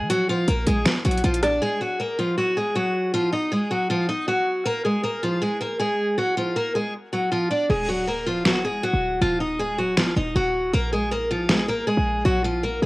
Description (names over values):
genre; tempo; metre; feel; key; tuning
hip hop, trap; 158 BPM; 4/4; half-time; Eb minor; A4 = 440 Hz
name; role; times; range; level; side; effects
picked steel-string acoustic guitar; melody; 0.0-12.9 s; F3 to Eb5; -22 LUFS; equal; cassette tape
short 808-style bass; bass; 0.0-1.6, 7.7-12.9 s; Eb1 to F3; -26 LUFS; equal; none
dubstep drum kit; drums; 0.1-1.5, 7.7-11.6 s; crash cymbal, finger snaps, hi-hat, rim click, snare drum; -23 LUFS; equal; overdrive, cassette tape
room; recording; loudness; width
little or no reverb; home recording on cassette; -20 LUFS; side -21 dB against mid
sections
0.0-1.6 A section; 1.6-7.7 B section; 7.7-12.9 C section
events
hi-hats muted 7.7-12.9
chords
0.0 Bb; 1.6 Ebm; 4.7 Bb5; 7.7 Ebm; 10.7 Bb5